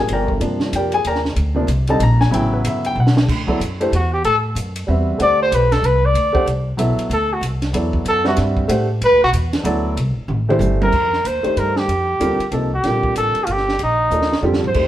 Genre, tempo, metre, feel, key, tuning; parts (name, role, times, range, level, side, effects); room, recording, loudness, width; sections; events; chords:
modal jazz; 188 BPM; 3/4; swing 61% on 8ths; D mixolydian from 3.3 s, F mixolydian from 10.9 s; A4 = 439 Hz
warm grand piano; accompaniment; 0.0-14.9 s; C3 to Bb5; -20 LUFS; equal
upright bass; bass; 0.0-14.9 s; G1 to A2; -20 LUFS; equal
compact cocktail drum kit; drums; 0.1-14.8 s; crash cymbal, hi-hat, kick drum, ride cymbal, snare drum, toms; -24 LUFS; right 1 dB
trumpet with bucket mute; melody; 4.0-14.9 s; Eb4 to D5; -17 LUFS; equal
moderate stone room reverb, RT60 1.1 s; band playing live in one room; -15 LUFS; side -12 dB against mid
0.0-3.3 A section; 3.3-10.9 A section; 10.9-14.9 B section
drum fill 3.0-3.3, 10.3-10.9, 14.1-14.8; muted trumpet solo 3.3-10.9
0.0 Gm; 2.3 A13; 3.3 D9; 5.2 Bm; 7.1 D9; 9.0 Bm; 10.0 C69; 10.9 F13sus4